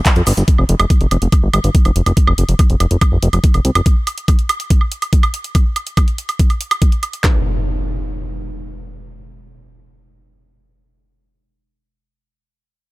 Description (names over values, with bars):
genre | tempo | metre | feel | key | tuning
psychedelic trance | 142 BPM | 4/4 | straight | unclear | A4 = 445 Hz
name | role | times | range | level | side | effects
drum and bass drum kit | drums | 0.1-7.3 s | handclaps, kick drum, snare drum | -12 LUFS | equal | overdrive
drum and bass drum kit | drums | 0.1-7.2 s | handclaps, hi-hat, woodblock | -20 LUFS | right 3 dB | none
maracas | percussion | 0.1-0.5 s | none | -28 LUFS | left 3 dB | none
fat analog bass | bass | 0.2-3.8 s | F1 to F2 | -14 LUFS | equal | none
impact | sound effects | 7.2-11.3 s | none | -22 LUFS | equal | none
room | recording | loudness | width
little or no reverb | none | -13 LUFS | side -20 dB against mid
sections
0.0-7.2 A section; 7.2-10.6 B section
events
filter sweep on analog synth bass 0.0-3.9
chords
none